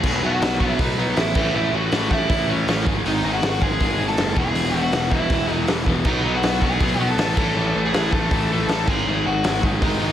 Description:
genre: punk rock.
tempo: 160 BPM.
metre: 4/4.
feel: straight.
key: B mixolydian.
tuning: A4 = 440 Hz.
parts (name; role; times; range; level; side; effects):
dark smooth lead guitar; melody; 0.0-10.1 s; C#4 to A5; -24 LUFS; equal; overdrive.
distorted electric guitar; riff; 0.0-10.1 s; E2 to B3; -23 LUFS; equal; distortion.
fuzz picked electric bass; bass; 0.0-10.1 s; E1 to B1; -25 LUFS; equal; overdrive.
raw garage drum kit; drums; 0.0-9.9 s; crash cymbal, hi-hat, kick drum, snare drum; -23 LUFS; equal; none.
room: little or no reverb.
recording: none.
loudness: -18 LUFS.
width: side -10 dB against mid.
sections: 0.0-10.1 A section.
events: none.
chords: 0.0 B; 1.4 A; 2.9 G#5; 4.4 E; 6.1 B; 7.4 A5; 8.9 G#5.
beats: | 0.04 0.42 0.79 1.17 | 1.55 1.92 2.30 2.67 | 3.05 3.42 3.80 4.18 | 4.55 4.93 5.30 5.68 | 6.05 6.43 6.80 7.18 | 7.56 7.93 8.31 8.69 | 9.06 9.44 9.81.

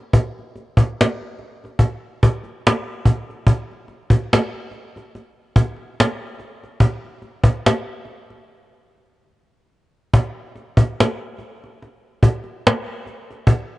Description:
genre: R&B.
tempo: 72 BPM.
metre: 4/4.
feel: swing 56% on 16ths.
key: none.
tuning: none.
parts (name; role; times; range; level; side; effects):
cajon; drums; 0.1-13.7 s; none; -15 LUFS; equal; none.
room: little or no reverb.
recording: worn, warbling old tape, cassette tape, warbly pitch drift, nothing above 10.4 kHz.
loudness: -17 LUFS.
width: side -18 dB against mid.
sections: 0.0-10.1 A section; 10.1-13.8 B section.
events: break 8.5-10.1.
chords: none.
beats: | 0.14 0.97 1.81 2.64 | 3.48 4.31 5.14 5.97 | 6.81 7.64 8.47 9.31 | 10.14 10.97 11.81 12.64 | 13.47.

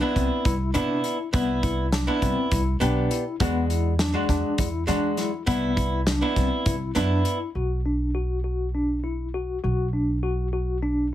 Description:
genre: progressive instrumental, band music in an uneven meter.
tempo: 203 BPM (eighths).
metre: 7/8.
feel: straight.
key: B phrygian.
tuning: A4 = 440 Hz.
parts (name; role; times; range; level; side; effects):
archtop guitar, miked and amplified; accompaniment; 0.0-7.4 s; G#3 to G4; -26 LUFS; right 1 dB; none.
bright tine electric piano; arpeggios; 0.0-11.1 s; B3 to F#4; -28 LUFS; left 2 dB; medium tremolo.
upright bass; bass; 0.2-11.1 s; B1 to E3; -26 LUFS; equal; none.
loose indie drum kit; drums; 0.2-7.4 s; hi-hat, kick drum, snare drum; -27 LUFS; equal; none.
room: light reverb.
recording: heavily compressed radio sound, multiband compression.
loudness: -22 LUFS.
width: side -12 dB against mid.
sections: 0.0-7.6 A section; 7.6-11.1 B section.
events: none.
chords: 0.0 Cmaj7; 3.4 E7; 5.5 Cmaj7; 7.6 Bm.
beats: 0.17 0.46 0.76 1.05 | 1.35 1.64 1.94 2.23 2.53 2.82 3.12 | 3.41 3.71 4.00 4.30 4.59 4.89 5.19 | 5.48 5.78 6.07 6.37 6.67 6.96 7.26 | 7.56 7.85 8.15 8.45 8.74 9.04 9.34 | 9.64 9.94 10.23 10.53 10.83 11.13.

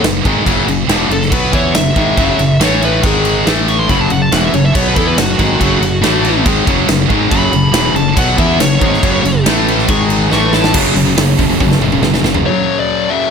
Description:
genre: heavy metal.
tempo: 140 BPM.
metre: 4/4.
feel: straight.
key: F# minor.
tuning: A4 = 439 Hz.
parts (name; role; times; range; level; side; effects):
high-gain lead guitar; melody; 0.0-13.3 s; F#4 to C#6; -18 LUFS; equal; distortion.
distorted electric guitar; riff; 0.0-13.3 s; E2 to E4; -17 LUFS; left 14 dB; overdrive.
heavy high-gain guitar; riff; 0.0-12.5 s; E2 to E4; -17 LUFS; right 10 dB; distortion.
fuzz fingered electric bass; bass; 0.0-12.4 s; E1 to E2; -18 LUFS; equal; overdrive.
big rock drum kit; drums; 0.0-12.4 s; crash cymbal, hi-hat, kick drum, snare drum, toms; -16 LUFS; equal; none.
clear studio string section; sustained chords; 3.9-13.3 s; C#3 to A5; -27 LUFS; equal; none.
thick fuzz guitar; riff; 3.9-12.4 s; E2 to E4; -18 LUFS; equal; distortion.
room: light reverb.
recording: none.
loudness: -10 LUFS.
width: side -6 dB against mid.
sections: 0.0-10.7 A section; 10.7-12.5 B section.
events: lead electric guitar solo 0.0-10.7; drum fill 10.3-10.7, 11.6-12.5.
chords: 0.0 F#5; 2.6 A5; 3.0 G#5; 3.5 A5; 3.9 F#m; 6.0 A5; 6.5 F#m; 9.5 A5; 9.9 G#5; 10.3 A5; 10.7 F#m.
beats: 0.04 | 0.47 0.89 1.32 1.75 | 2.18 2.61 3.03 3.46 | 3.89 4.32 4.75 5.17 | 5.60 6.03 6.46 6.89 | 7.32 7.74 8.17 8.60 | 9.03 9.46 9.89 10.32 | 10.74 11.17 11.60 12.03 | 12.46 12.89.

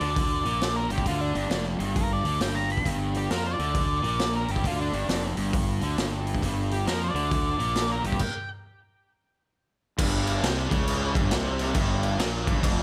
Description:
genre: blues rock power trio and southern rock.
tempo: 135 BPM.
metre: 4/4.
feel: swing 64% on 8ths.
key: unclear.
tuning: A4 = 440 Hz.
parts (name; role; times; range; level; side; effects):
octave-fuzz lead guitar; melody; 0.0-8.5 s; D4 to B5; -32 LUFS; equal; distortion.
cranked stack guitar; riff; 0.0-12.8 s; F2 to F3; -33 LUFS; equal; overdrive.
fuzz fingered electric bass; bass; 0.0-12.8 s; F1 to F2; -32 LUFS; equal; overdrive.
raw garage drum kit; drums; 0.0-12.8 s; crash cymbal, hi-hat, kick drum, snare drum; -31 LUFS; equal; none.
room: little or no reverb.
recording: none.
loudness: -26 LUFS.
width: mono.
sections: 0.0-10.0 A section; 10.0-12.8 B section.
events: stop 8.2-10.0.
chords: 0.0 G5; 10.0 Bbm69.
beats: 0.17 0.62 | 1.06 1.51 1.96 2.40 | 2.85 3.30 3.74 4.19 | 4.64 5.08 5.53 5.97 | 6.42 6.87 7.31 7.76 | 8.20 8.65 9.09 9.53 | 9.98 10.42 10.86 11.30 | 11.75 12.19 12.63.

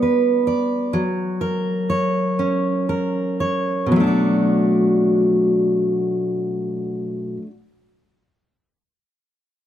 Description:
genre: pop.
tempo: 38-44 BPM (dotted quarters).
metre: 6/8.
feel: straight.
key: B minor.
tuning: A4 = 437 Hz.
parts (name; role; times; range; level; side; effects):
fingerpicked steel-string acoustic guitar; accompaniment; 0.0-7.6 s; B2 to D5; -18 LUFS; equal; none.
room: light reverb.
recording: none.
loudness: -18 LUFS.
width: side -11 dB against mid.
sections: 0.0-3.9 A section; 3.9-7.1 B section.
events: slowing down 0.0-3.9.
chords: 0.0 G; 0.9 F#; 3.9 Bm7.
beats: | 0.93 2.38 | 3.93 5.51.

